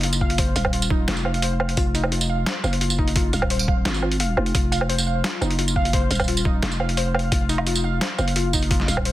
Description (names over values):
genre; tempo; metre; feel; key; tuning
half-time drum and bass; 173 BPM; 4/4; half-time; F phrygian; A4 = 440 Hz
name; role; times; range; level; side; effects
warbly dusty pluck; arpeggios; 0.0-9.1 s; Eb4 to F5; -27 LUFS; left 1 dB; chorus, digital delay
growling 808-style bass; bass; 0.0-9.1 s; Eb1 to Ab1; -23 LUFS; equal; none
boom bap sampler-style drum kit; drums; 0.0-9.1 s; hi-hat, snare drum, tambourine, woodblock; -25 LUFS; right 2 dB; none
electronic kick drum; drums; 0.2-9.0 s; none; -23 LUFS; equal; none
room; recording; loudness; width
light reverb, digital ambience; dense, heavily limited modern master; -19 LUFS; side -15 dB against mid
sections
0.0-9.1 A section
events
none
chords
0.0 F5